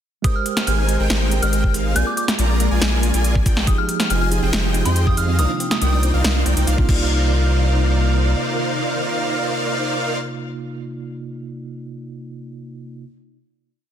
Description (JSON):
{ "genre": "future bass", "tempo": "140 BPM", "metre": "4/4", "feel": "half-time", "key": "C minor", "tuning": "A4 = 440 Hz", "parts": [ { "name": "soft synth bell", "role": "melody", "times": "0.2-6.0 s", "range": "C6 to G6", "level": "-26 LUFS", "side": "equal", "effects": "chorus, phaser, sidechain pumping, ping-pong delay" }, { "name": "mellow tine electric piano", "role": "accompaniment", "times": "0.2-13.1 s", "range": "C3 to D5", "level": "-27 LUFS", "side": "right 3 dB", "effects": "medium stereo tremolo, vintage 12-bit sampler grit, sidechain pumping, ping-pong delay" }, { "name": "ethereal airy pad", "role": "sustained chords", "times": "0.9-10.2 s", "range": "C3 to G5", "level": "-30 LUFS", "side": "left 2 dB", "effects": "ensemble chorus, built-in reverb, phaser, sidechain pumping" }, { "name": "airy dreamy lead", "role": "arpeggios", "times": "0.2-10.2 s", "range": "F5 to Bb5", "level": "-29 LUFS", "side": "left 1 dB", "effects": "chorus, sidechain pumping, ping-pong delay" }, { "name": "supersaw chords", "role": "riff", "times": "0.2-10.2 s", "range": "Eb4 to Bb5", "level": "-26 LUFS", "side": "equal", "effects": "ensemble chorus, sidechain pumping, ping-pong delay" }, { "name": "saturated sub bass", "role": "bass", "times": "0.2-8.3 s", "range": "F1 to F2", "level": "-19 LUFS", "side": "equal", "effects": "sidechain pumping" }, { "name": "big-room dance drum kit", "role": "drums", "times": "0.2-7.0 s", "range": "crash cymbal, hi-hat, snare drum", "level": "-23 LUFS", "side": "equal", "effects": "none" }, { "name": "electronic kick drum", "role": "drums", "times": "0.2-7.0 s", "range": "none", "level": "-18 LUFS", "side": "equal", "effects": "none" }, { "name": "wide unison pluck", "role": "arpeggios", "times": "3.7-7.3 s", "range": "Bb3 to G4", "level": "-33 LUFS", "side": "right 2 dB", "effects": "none" } ], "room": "little or no reverb", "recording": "dense, heavily limited modern master", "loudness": "-16 LUFS", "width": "side -10 dB against mid", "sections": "0.2-7.1 drop; 7.1-10.5 final hit", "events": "drop 0.2-7.1; band accent 7.0", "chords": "0.2 Abmaj9; 2.0 Bb7; 3.7 Fm9; 5.4 Cm11", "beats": "| 0.24 0.67 1.10 1.53 | 1.96 2.39 2.81 3.24 | 3.67 4.10 4.53 4.96 | 5.39 5.82 6.24 6.67 | 7.10 7.53 7.96 8.39 | 8.81 9.24 9.67 10.10" }